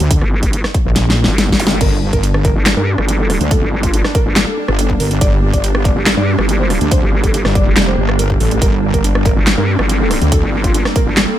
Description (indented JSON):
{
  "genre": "heavy wobble dubstep",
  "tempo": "141 BPM",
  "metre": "4/4",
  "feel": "half-time",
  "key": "G minor",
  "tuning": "A4 = 440 Hz",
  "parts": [
    { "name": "wobble bass", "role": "bass", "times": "0.0-10.4 s", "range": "F1 to D2", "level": "-15 LUFS", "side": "equal", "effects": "chorus, overdrive" },
    { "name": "dubstep drum kit", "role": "drums", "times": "0.0-11.3 s", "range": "crash cymbal, handclaps, hi-hat, rim click, snare drum", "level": "-17 LUFS", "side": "equal", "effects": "studio reverb" },
    { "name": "electronic kick drum", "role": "drums", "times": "0.1-11.0 s", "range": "none", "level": "-16 LUFS", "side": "equal", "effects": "studio reverb" },
    { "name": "vowel-sweep wobble bass", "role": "bass", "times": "0.2-11.3 s", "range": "F1 to G2", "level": "-16 LUFS", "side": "equal", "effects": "chorus, overdrive" },
    { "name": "zap", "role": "sound effects", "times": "1.6-1.7 s", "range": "none", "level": "-24 LUFS", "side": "equal", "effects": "none" },
    { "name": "felt-muted upright piano", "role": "melody", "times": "1.8-11.4 s", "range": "D4 to D5", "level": "-22 LUFS", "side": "equal", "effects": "tape echo" },
    { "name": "evolving wavetable pad", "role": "sustained chords", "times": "2.4-11.4 s", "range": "G3 to D4", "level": "-22 LUFS", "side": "right 2 dB", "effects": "ensemble chorus, built-in reverb, sidechain pumping" }
  ],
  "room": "little or no reverb",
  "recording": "none",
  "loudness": "-12 LUFS",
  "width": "side -12 dB against mid",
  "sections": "0.0-11.4 A section",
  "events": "drum fill 1.0-1.8",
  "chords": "0.0 Gm",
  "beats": "| 0.11 0.53 0.96 1.38 | 1.81 2.23 2.66 3.08 | 3.51 3.94 4.36 4.79 | 5.21 5.64 6.06 6.49 | 6.92 7.34 7.77 8.19 | 8.62 9.04 9.47 9.89 | 10.32 10.74 11.17"
}